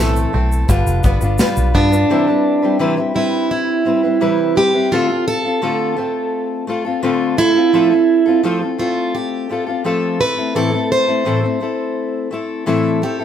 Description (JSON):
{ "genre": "acoustic pop", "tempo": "85 BPM", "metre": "4/4", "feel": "straight", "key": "C major", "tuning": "A4 = 440 Hz", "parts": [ { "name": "picked plugged-in steel-string acoustic guitar", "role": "melody", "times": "0.0-13.2 s", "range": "D4 to C5", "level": "-17 LUFS", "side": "right 3 dB", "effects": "none" }, { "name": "fingerpicked steel-string acoustic guitar", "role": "accompaniment", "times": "0.0-13.2 s", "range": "A2 to B4", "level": "-18 LUFS", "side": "left 3 dB", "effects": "none" }, { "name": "bluegrass banjo", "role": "arpeggios", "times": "0.0-2.7 s", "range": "D3 to F4", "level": "-29 LUFS", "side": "right 3 dB", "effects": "none" }, { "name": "vintage muted fingered electric bass", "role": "bass", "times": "0.0-2.0 s", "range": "F1 to G2", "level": "-17 LUFS", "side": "equal", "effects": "none" }, { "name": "natural country drum kit", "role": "drums", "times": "0.2-2.1 s", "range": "kick drum, shaker, snare drum", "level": "-18 LUFS", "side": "equal", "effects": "none" } ], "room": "moderate studio ambience, RT60 0.5 s", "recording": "heard from further back in the room", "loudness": "-14 LUFS", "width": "side -9 dB against mid", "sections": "0.0-2.1 A section; 2.1-13.2 A section", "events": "none", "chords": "0.0 Am; 0.7 G7; 2.1 Cmaj7; 4.9 Dm7; 7.4 F; 10.2 Am", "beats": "0.69 1.40 | 2.10 2.81 3.51 4.21 | 4.92 5.62 6.33 7.03 | 7.74 8.44 9.15 9.85 | 10.55 11.26 11.96 12.67" }